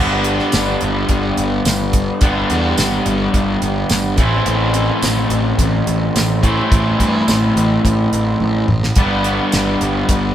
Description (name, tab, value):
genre	classic rock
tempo	107 BPM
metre	4/4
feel	straight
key	A minor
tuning	A4 = 440 Hz
part	raw garage guitar	riff	0.0-10.3 s	G2 to E4	-16 LUFS	equal	overdrive
part	fuzz picked electric bass	bass	0.0-10.3 s	G1 to G2	-19 LUFS	equal	overdrive
part	damped 70s drum kit	drums	0.2-10.2 s	hi-hat, kick drum, snare drum, tambourine, toms	-18 LUFS	equal	none
room	wet stone room reverb, RT60 1.0 s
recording	band playing live in one room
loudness	-14 LUFS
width	side -11 dB against mid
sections	0.0-10.3 A section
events	drum fill 8.4-9.0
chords	0.0 G; 4.2 Am; 9.0 G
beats	0.53 1.09 1.66 | 2.22 2.78 3.34 3.91 | 4.47 5.03 5.59 6.16 | 6.72 7.28 7.84 8.41 | 8.97 9.53 10.09